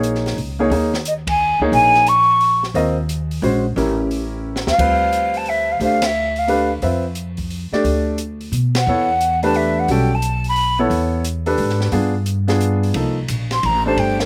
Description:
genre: modal jazz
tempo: 177 BPM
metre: 3/4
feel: swing 65% on 8ths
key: D dorian from 4.8 s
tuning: A4 = 440 Hz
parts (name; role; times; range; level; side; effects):
- warm baby grand piano; accompaniment; 0.0-14.3 s; F3 to E5; -22 LUFS; equal; none
- upright bass; bass; 0.0-14.3 s; G1 to B2; -24 LUFS; equal; none
- open jazz drum kit; drums; 0.0-14.2 s; crash cymbal, hi-hat, kick drum, ride cymbal, snare drum; -31 LUFS; equal; none
- breathy mellow jazz flute; melody; 1.1-2.6, 4.7-6.7, 8.8-10.8, 13.5-14.3 s; Bb4 to Db6; -18 LUFS; equal; slapback echo
room: little or no reverb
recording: recorded outdoors, with no room sound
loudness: -18 LUFS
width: mono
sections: 0.0-4.8 A section; 4.8-12.9 B section; 12.9-14.3 C section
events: band accent 1.2, 6.0, 8.7; drum fill 4.4-4.8; flute solo 12.9-14.3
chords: 0.0 Eb7sus4; 3.8 A7b9; 4.8 Dm11; 8.9 Em11; 11.9 G7b9; 12.9 Cm9

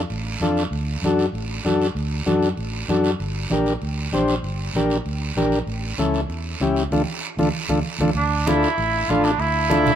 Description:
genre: latin, cumbia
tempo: 194 BPM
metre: 4/4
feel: straight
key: unclear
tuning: A4 = 440 Hz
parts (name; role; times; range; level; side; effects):
- fingered electric bass; bass; 0.0-9.9 s; G1 to F#2; -25 LUFS; right 1 dB; none
- congas; percussion; 0.1-10.0 s; none; -27 LUFS; right 4 dB; none
- guiro; percussion; 0.1-10.0 s; none; -32 LUFS; right 6 dB; none
- combo organ; accompaniment; 0.4-9.9 s; C#4 to C5; -22 LUFS; left 2 dB; none
- warm trumpet; second line; 8.2-10.0 s; D4 to F4; -20 LUFS; right 3 dB; none
room: light reverb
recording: minimal, uncompressed stereo recording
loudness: -19 LUFS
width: side -9 dB against mid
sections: 0.0-8.2 A section; 8.2-10.0 B section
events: band accent 6.9-8.2; drum fill 7.5-8.2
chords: 0.0 Dm; 0.7 D; 3.2 Gm; 5.7 A; 6.9 Dm; 8.2 Dmadd9

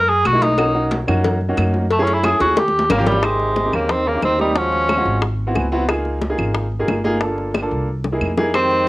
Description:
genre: Afro-Cuban jazz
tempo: 181 BPM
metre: 4/4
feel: straight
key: Ab major from 3.2 s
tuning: A4 = 440 Hz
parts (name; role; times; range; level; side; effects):
- warm tenor saxophone; melody; 0.0-5.2, 8.5-8.9 s; G3 to Bb4; -17 LUFS; equal; none
- upright bass; bass; 0.0-8.9 s; G1 to Gb2; -23 LUFS; equal; none
- congas; percussion; 0.1-8.9 s; none; -27 LUFS; equal; none
- warm baby grand piano; accompaniment; 0.3-8.8 s; Ab3 to Ab5; -22 LUFS; right 1 dB; cassette tape
- claves; percussion; 0.3-8.7 s; none; -28 LUFS; right 2 dB; none
- cowbell and bongos; percussion; 0.3-8.9 s; none; -24 LUFS; left 4 dB; none
- bright trombone; second line; 2.9-5.2, 8.5-8.9 s; Bb2 to G3; -25 LUFS; right 2 dB; cassette tape
room: moderate studio reverb, RT60 0.6 s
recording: home recording on cassette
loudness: -16 LUFS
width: side -18 dB against mid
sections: 0.0-3.2 A section; 3.2-8.9 B section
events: tenor saxophone solo 0.0-3.2; drum fill 2.6-3.2, 7.5-8.5; grand piano fill 5.4-5.9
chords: 0.0 Gb13; 0.6 Cbmaj9; 1.9 Gbm7; 2.6 Eb7; 3.2 Abmaj9; 4.6 Ebm11; 5.2 Ab7alt; 5.9 Db69; 7.2 Gm7; 7.9 C7alt

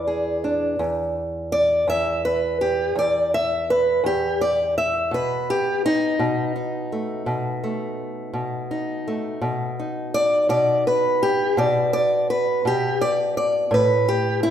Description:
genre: acoustic country blues, solo or duo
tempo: 56 BPM (dotted quarters)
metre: 12/8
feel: straight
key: unclear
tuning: A4 = 440 Hz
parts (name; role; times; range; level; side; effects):
- fingerpicked old ladder-braced acoustic guitar; solo; 0.0-14.5 s; E2 to E5; -19 LUFS; equal; none
room: moderate scoring stage reverb, RT60 1.5 s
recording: recorded in a church or concert hall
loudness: -19 LUFS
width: side -9 dB against mid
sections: 0.0-14.5 A section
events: steel-string acoustic guitar solo 0.0-14.5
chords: 0.0 E7; 5.1 B7; 13.7 A5

